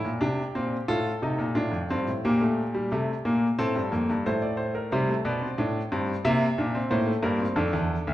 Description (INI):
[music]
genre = classical, baroque-style 3-part fugue for grand piano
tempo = 90 BPM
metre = 4/4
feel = straight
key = F major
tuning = A4 = 440 Hz
[part]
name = clear concert grand piano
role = solo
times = 0.0-8.1 s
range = D2 to E5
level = -24 LUFS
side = equal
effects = none
[sound]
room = wet recital hall reverb, RT60 1.7 s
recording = recorded in a church or concert hall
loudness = -24 LUFS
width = side -14 dB against mid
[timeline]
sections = 0.0-8.1 A section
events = none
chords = 0.0 F (rootless); 0.9 F7/A; 2.2 Gmadd9/Bb; 3.6 F; 4.9 C5; 6.3 C7; 7.6 F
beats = 0.21 0.88 1.56 | 2.23 2.90 3.58 4.25 | 4.92 5.59 6.26 6.92 | 7.58